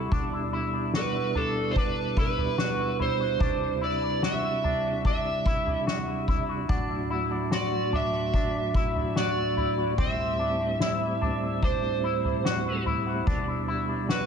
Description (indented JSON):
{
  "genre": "dream pop",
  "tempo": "73 BPM",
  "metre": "4/4",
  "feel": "straight",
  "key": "unclear",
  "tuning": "A4 = 440 Hz",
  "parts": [
    { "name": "mellow tonewheel organ", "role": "sustained chords", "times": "0.0-14.3 s", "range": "A2 to F#4", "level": "-31 LUFS", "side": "right 2 dB", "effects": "chorus vibrato, fast rotary speaker" },
    { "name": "electric guitar with an envelope filter", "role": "arpeggios", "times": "0.0-14.3 s", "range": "C4 to F#4", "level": "-32 LUFS", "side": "left 5 dB", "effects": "analog chorus, analog delay" },
    { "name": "soft-mallet drum kit", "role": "drums", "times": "0.1-14.3 s", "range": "kick drum, snare drum, toms", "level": "-30 LUFS", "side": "left 1 dB", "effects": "none" },
    { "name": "overdriven slide guitar", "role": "melody", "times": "1.0-14.3 s", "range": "A4 to E5", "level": "-30 LUFS", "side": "right 3 dB", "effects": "analog delay" },
    { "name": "glassy synth bell", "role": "texture", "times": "6.7-12.1 s", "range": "F#5 to D6", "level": "-44 LUFS", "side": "right 1 dB", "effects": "chorus, analog delay" }
  ],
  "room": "moderate plate reverb, RT60 2.2 s",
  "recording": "echo-heavy mix",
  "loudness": "-24 LUFS",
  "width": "side -7 dB against mid",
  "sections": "0.0-14.3 A section",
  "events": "none",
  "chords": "0.1 G6; 3.4 Cadd9; 6.7 D/A; 10.0 Am7; 13.3 G6"
}